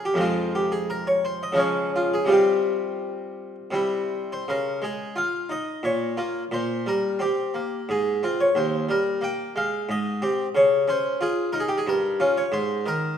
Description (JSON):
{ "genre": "classical, baroque-style suite movement for harpsichord", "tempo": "81-91 BPM", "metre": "3/4", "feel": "rubato", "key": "unclear", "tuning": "A4 = 441 Hz", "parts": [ { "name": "harpsichord", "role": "solo", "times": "0.0-13.2 s", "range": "Eb2 to G5", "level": "-22 LUFS", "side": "equal", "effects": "none" } ], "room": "moderate recital hall reverb, RT60 1.6 s", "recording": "minimal, uncompressed stereo recording", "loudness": "-22 LUFS", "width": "side -8 dB against mid", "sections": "0.0-4.5 A section; 4.5-13.2 B section", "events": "none", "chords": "0.2 Fm; 1.6 Db; 2.3 Csus4; 3.8 C; 4.5 Db; 5.8 Bbm; 6.5 C5/Bb; 7.9 Fm/Ab; 8.6 Eb; 9.9 Abmaj7; 10.5 Db; 11.9 Gm7b5; 12.5 Ab", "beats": "| 0.20 0.88 1.58 | 2.31 3.04 3.76 | 4.47 5.16 5.84 | 6.52 7.21 7.89 | 8.56 9.22 9.89 | 10.55 11.21 11.88 | 12.54" }